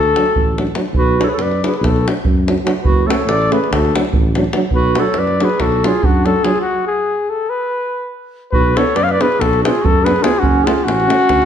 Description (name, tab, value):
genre	balkan folk, Balkan brass band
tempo	285 BPM (eighths)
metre	9/8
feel	straight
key	B dorian sharp4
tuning	A4 = 440 Hz
part	warm flugelhorn	melody	0.0-11.5 s	F#4 to E#5	-17 LUFS	left 3 dB	none
part	warm clarinet	second line	0.0-11.5 s	C#4 to C#5	-20 LUFS	right 5 dB	none
part	dark tuba	bass	0.0-11.5 s	F#1 to F#2	-20 LUFS	left 1 dB	none
part	davul	percussion	0.0-11.5 s	none	-18 LUFS	right 1 dB	none
part	mellow French horn	accompaniment	0.2-11.2 s	C#4 to D4	-24 LUFS	left 4 dB	none
part	warm euphonium	accompaniment	0.2-11.2 s	F#3 to B3	-23 LUFS	right 5 dB	none
room	moderate recital hall reverb, RT60 1.5 s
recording	none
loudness	-13 LUFS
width	side -9 dB against mid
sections	0.0-8.5 A section; 8.5-11.5 A section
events	stop 6.6-8.5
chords	0.0 D; 0.9 Bm; 2.8 F#m; 3.7 D; 4.7 Bm; 6.6 N.C.; 8.5 Bm; 10.4 F#m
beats	0.10 0.31 0.52 0.73 | 0.94 1.15 1.36 1.57 1.78 2.00 2.21 2.42 2.63 | 2.84 3.05 3.26 3.47 3.68 3.89 4.10 4.31 4.52 | 4.73 4.94 5.16 5.37 5.58 5.79 6.00 6.21 6.42 | 6.63 6.84 7.05 7.26 7.47 7.68 7.89 8.10 8.31 | 8.52 8.73 8.94 9.14 9.35 9.56 9.77 9.98 10.19 | 10.40 10.61 10.82 11.03 11.24 11.45